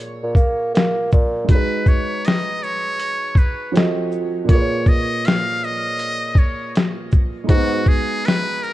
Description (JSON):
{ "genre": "lo-fi hip hop", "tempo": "80 BPM", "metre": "4/4", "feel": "swing 64% on 16ths", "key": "unclear", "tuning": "A4 = 441 Hz", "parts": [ { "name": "felt-muted upright piano", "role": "accompaniment", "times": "0.0-8.7 s", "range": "A#2 to Eb5", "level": "-25 LUFS", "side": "right 2 dB", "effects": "none" }, { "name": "mellow bassoon", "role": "bass", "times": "0.2-1.5, 7.5-7.8 s", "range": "G#2 to A#3", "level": "-20 LUFS", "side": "right 1 dB", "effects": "none" }, { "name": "boom bap sampler-style drum kit", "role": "drums", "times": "0.3-8.7 s", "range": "hi-hat, kick drum, shaker, snare drum", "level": "-16 LUFS", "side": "equal", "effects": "none" }, { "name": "trumpet with metal mute", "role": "melody", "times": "1.5-8.7 s", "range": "F#4 to E#5", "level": "-24 LUFS", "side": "equal", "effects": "tape echo" } ], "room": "light reverb", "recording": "dark, warm production", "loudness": "-16 LUFS", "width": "side -15 dB against mid", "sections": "0.0-8.7 A section", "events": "none", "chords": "0.0 A#m7; 1.5 G#m7; 3.7 F7b9; 4.5 A#m7; 7.5 G#m7" }